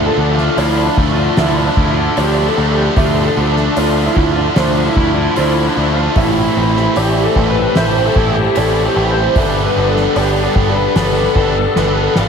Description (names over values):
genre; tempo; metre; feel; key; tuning
post-rock; 75 BPM; 4/4; straight; unclear; A4 = 440 Hz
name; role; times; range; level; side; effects
lead guitar through a small cranked amp; melody; 0.0-12.3 s; D4 to F5; -17 LUFS; left 1 dB; overdrive, wide subtle chorus, ping-pong delay
dark studio string section; sustained chords; 0.0-12.3 s; F3 to A5; -26 LUFS; equal; none
felt-muted upright piano; arpeggios; 0.0-12.3 s; B4 to E5; -24 LUFS; right 4 dB; ping-pong delay
twangy electric guitar; arpeggios; 0.0-12.3 s; A2 to A4; -25 LUFS; left 2 dB; none
tight distorted guitar; riff; 0.0-12.3 s; G2 to E4; -21 LUFS; left 9 dB; distortion
tight distorted guitar; riff; 0.0-12.3 s; G2 to E4; -20 LUFS; right 10 dB; distortion
growling picked electric bass; bass; 0.0-12.3 s; G1 to D2; -18 LUFS; equal; overdrive
soft-mallet drum kit; drums; 0.4-12.3 s; hi-hat, kick drum, snare drum; -20 LUFS; equal; none
room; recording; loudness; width
wet lush hall reverb, RT60 2.0 s, small room ambience; dreamy mix soaked in reverb; -11 LUFS; side -6 dB against mid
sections
0.0-12.3 A section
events
drum fill 11.8-12.3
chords
0.0 Dmadd9; 6.2 Am7; 9.4 Gadd9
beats
0.58 1.38 2.18 | 2.98 3.77 4.57 5.37 | 6.17 6.97 7.76 8.56 | 9.36 10.16 10.96 11.76